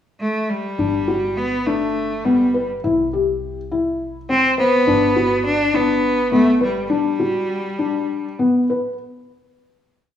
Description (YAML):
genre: contemporary instrumental, chamber music in an uneven meter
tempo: 205 BPM (eighths)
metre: 7/8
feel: straight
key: G major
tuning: A4 = 441 Hz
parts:
  - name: bright cello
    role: melody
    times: 0.2-8.4 s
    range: G3 to D4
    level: -20 LUFS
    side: right 1 dB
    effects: none
  - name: felt-muted upright piano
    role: arpeggios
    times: 0.8-8.9 s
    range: B3 to C5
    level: -18 LUFS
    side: left 3 dB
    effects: none
  - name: upright bass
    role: bass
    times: 0.8-6.9 s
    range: G1 to C2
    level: -32 LUFS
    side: equal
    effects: none
room: moderate recital hall reverb, RT60 1.3 s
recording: worn, warbling old tape, cassette tape, warbly pitch drift, studio reverb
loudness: -17 LUFS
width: side -10 dB against mid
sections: 0.0-0.8 pickup bar; 0.8-9.0 A section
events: slowing down 4.9-9.0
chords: 0.0 N.C.; 0.8 Gmaj7; 2.8 C; 4.9 Gmaj7